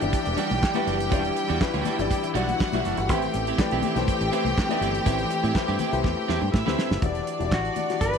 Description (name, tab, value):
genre	disco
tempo	122 BPM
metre	4/4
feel	straight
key	E minor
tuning	A4 = 440 Hz
part	clear studio violin section	second line	0.0-8.2 s	D4 to G5	-29 LUFS	right 1 dB	none
part	electric guitar at the edge of break-up	accompaniment	0.0-6.9 s	G3 to G4	-32 LUFS	right 14 dB	none
part	warm baby grand piano	accompaniment	0.0-8.2 s	E3 to E5	-29 LUFS	left 10 dB	none
part	clear studio string section	sustained chords	0.0-7.0 s	E3 to G4	-32 LUFS	right 1 dB	none
part	fingered electric bass	bass	0.0-8.2 s	E1 to A2	-29 LUFS	right 1 dB	none
part	damped 70s drum kit	drums	0.0-8.2 s	handclaps, hi-hat, kick drum, snare drum	-27 LUFS	right 1 dB	none
part	congas	percussion	0.1-7.9 s	none	-36 LUFS	left 11 dB	none
part	electric guitar through a small old amp	melody	7.5-8.2 s	F#4 to B4	-26 LUFS	left 1 dB	none
room	light reverb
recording	1960s-style stereo with parts hard left and right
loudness	-22 LUFS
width	side -6 dB against mid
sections	0.0-7.0 A section; 7.0-8.2 B section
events	drum fill 6.0-7.0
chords	0.0 Em9; 3.1 Am7; 7.0 Em9